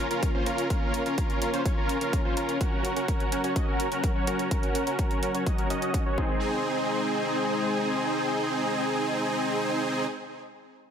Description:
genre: EDM, festival progressive house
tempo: 126 BPM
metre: 4/4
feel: straight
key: Ab major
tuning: A4 = 440 Hz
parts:
  - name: lush unison pad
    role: sustained chords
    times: 0.0-10.1 s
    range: Gb3 to C5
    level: -33 LUFS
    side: left 1 dB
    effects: chorus, sidechain pumping
  - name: dense compressed supersaw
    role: riff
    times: 0.0-10.1 s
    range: C4 to Eb5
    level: -27 LUFS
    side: right 1 dB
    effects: sidechain pumping, low-pass filter, digital delay
  - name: electronic hi-hat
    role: drums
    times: 0.1-6.0 s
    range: none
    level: -37 LUFS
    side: right 1 dB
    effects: none
  - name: electronic kick drum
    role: drums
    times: 0.2-6.3 s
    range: none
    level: -28 LUFS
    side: equal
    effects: none
room: light reverb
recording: none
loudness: -25 LUFS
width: side -8 dB against mid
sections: 0.0-6.4 A section; 6.4-10.2 B section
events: none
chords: 0.0 Bbm; 2.6 Gb; 6.2 Ab

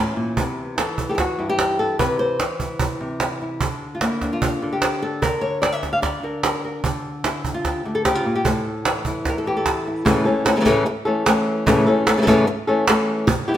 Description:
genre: flamenco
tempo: 149 BPM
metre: 4/4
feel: straight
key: A phrygian dominant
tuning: A4 = 437 Hz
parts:
  - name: flamenco guitar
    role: melody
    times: 0.0-13.6 s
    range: G2 to F5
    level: -20 LUFS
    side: left 1 dB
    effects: none
  - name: cajon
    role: percussion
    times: 0.2-13.5 s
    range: none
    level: -23 LUFS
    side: right 3 dB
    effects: none
room: wet stone room reverb, RT60 1.2 s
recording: none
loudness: -18 LUFS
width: side -11 dB against mid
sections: 0.0-10.1 A section; 10.1-13.6 B section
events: none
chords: 0.4 Cmaj7; 3.6 Bb/D; 6.8 D5; 8.4 A5; 10.1 A

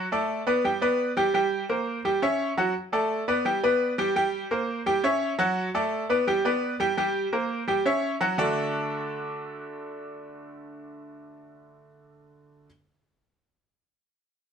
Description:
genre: latin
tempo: 170 BPM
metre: 4/4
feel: straight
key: D major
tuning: A4 = 440 Hz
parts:
  - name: bright upright piano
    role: solo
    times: 0.0-12.7 s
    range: D3 to G5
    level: -24 LUFS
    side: equal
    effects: none
room: moderate studio reverb, RT60 0.8 s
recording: none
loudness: -23 LUFS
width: side -7 dB against mid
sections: 0.0-2.8 A section; 2.8-8.4 B section; 8.4-11.2 C section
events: none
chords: 0.0 D5; 0.6 G; 1.3 C5; 2.0 Em69; 2.8 D5; 3.5 G; 4.2 C5; 4.9 Em69; 5.6 D; 6.3 G; 7.0 C5; 7.7 Em69; 8.4 D

